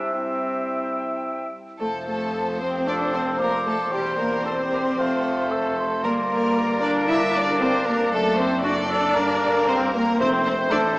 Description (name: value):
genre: quick classical-period movement for symphony orchestra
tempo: 114 BPM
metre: 4/4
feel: rubato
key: F major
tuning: A4 = 440 Hz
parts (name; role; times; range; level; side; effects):
- dark cor anglais; second line; 0.0-11.0 s; D4 to E5; -26 LUFS; equal; none
- flute section; second line; 0.0-1.5 s; G5; -38 LUFS; right 1 dB; none
- clear bassoon; accompaniment; 0.0-11.0 s; C3 to Bb3; -29 LUFS; equal; none
- dark French horn section; sustained chords; 0.0-11.0 s; G3 to E4; -30 LUFS; equal; none
- clear clarinet; second line; 0.1-11.0 s; C4 to D5; -30 LUFS; equal; none
- rich chamber violin section; melody; 1.8-11.0 s; A4 to C5; -32 LUFS; left 1 dB; none
- rich chamber violin section; second line; 1.8-10.8 s; G4 to E5; -28 LUFS; equal; none
- dark chamber viola section; accompaniment; 1.8-10.8 s; G3 to E4; -26 LUFS; equal; none
- rich chamber cello section; bass; 1.8-11.0 s; E2 to A2; -34 LUFS; equal; none
- rich studio double bass section; bass; 1.8-11.0 s; E1 to A1; -34 LUFS; equal; none
- timpani; percussion; 10.2-10.9 s; F2; -35 LUFS; equal; none
room: wet scoring stage reverb, RT60 2.1 s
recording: small speaker sound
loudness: -20 LUFS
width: side -24 dB against mid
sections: 0.0-1.8 A section; 1.8-11.0 B section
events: none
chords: 0.0 C; 1.8 F; 3.9 C/E; 5.0 F; 6.0 Gm; 8.1 D/F#; 9.2 Gm; 10.2 F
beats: 0.14 0.70 1.25 | 1.80 2.34 2.87 3.40 | 3.92 4.45 4.98 5.51 | 6.04 6.55 7.08 7.60 | 8.12 8.64 9.16 9.68 | 10.20 10.71